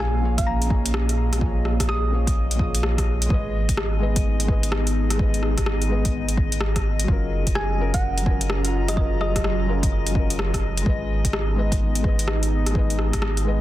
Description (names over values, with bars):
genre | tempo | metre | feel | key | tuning
future garage | 127 BPM | 4/4 | swing 64% on 16ths | G# dorian | A4 = 441 Hz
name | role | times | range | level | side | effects
thumb-piano-like synth pluck | melody | 0.0-2.3, 7.6-9.7 s | D#5 to D#6 | -32 LUFS | right 1 dB | chorus, tape echo
felt-muted upright piano | accompaniment | 0.0-13.6 s | A#2 to D#5 | -31 LUFS | left 3 dB | sidechain pumping, tape echo
warbly tape-like pad | sustained chords | 0.0-13.6 s | A#2 to A#5 | -30 LUFS | equal | chorus, built-in reverb, phaser, sidechain pumping
warm sub bass | bass | 0.0-13.6 s | F#1 to A#1 | -24 LUFS | equal | sidechain pumping
drifting glass-harmonics texture | texture | 0.0-13.6 s | D#5 | -36 LUFS | left 6 dB | chorus, built-in reverb
deep house drum kit | drums | 0.4-13.4 s | hi-hat, rim click | -28 LUFS | equal | overdrive
electronic kick drum | drums | 0.4-13.2 s | none | -24 LUFS | equal | overdrive
room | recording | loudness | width
digital ambience | dense, heavily limited modern master | -20 LUFS | side -14 dB against mid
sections
0.0-13.6 A section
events
none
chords
0.0 A#m7; 3.3 G#m; 7.1 F#maj7; 10.9 G#m